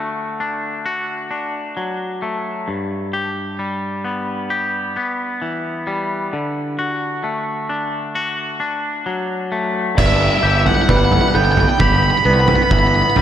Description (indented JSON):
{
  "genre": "post-rock",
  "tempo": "66 BPM",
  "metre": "4/4",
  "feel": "straight",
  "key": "G major",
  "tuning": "A4 = 440 Hz",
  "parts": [
    { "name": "twangy electric guitar", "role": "arpeggios", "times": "0.0-13.2 s", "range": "G2 to G4", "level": "-21 LUFS", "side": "left 2 dB", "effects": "tape echo" },
    { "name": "octave-fuzz lead guitar", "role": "melody", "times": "10.0-13.2 s", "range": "E5 to B5", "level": "-17 LUFS", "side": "right 2 dB", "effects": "distortion, tape echo" },
    { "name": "warm symphonic string section", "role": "sustained chords", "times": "10.0-13.2 s", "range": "D3 to F#5", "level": "-26 LUFS", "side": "right 1 dB", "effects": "none" },
    { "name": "electric guitar through a small old amp", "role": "arpeggios", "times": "10.0-13.2 s", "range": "A4 to D5", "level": "-22 LUFS", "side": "right 2 dB", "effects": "spring reverb, tape echo" },
    { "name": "fuzz fingered electric bass", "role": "bass", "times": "10.0-13.2 s", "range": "G1 to C2", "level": "-18 LUFS", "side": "right 1 dB", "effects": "overdrive" },
    { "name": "oversized low-tuned drum kit", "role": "drums", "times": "10.0-13.2 s", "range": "crash cymbal, kick drum, toms", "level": "-18 LUFS", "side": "right 2 dB", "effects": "none" }
  ],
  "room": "moderate lush hall reverb, RT60 2.7 s",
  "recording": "none",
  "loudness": "-16 LUFS",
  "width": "side -10 dB against mid",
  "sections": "0.0-10.0 A section; 10.0-13.2 B section",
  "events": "none",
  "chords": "0.0 D; 2.7 G6; 6.3 D; 10.0 G6"
}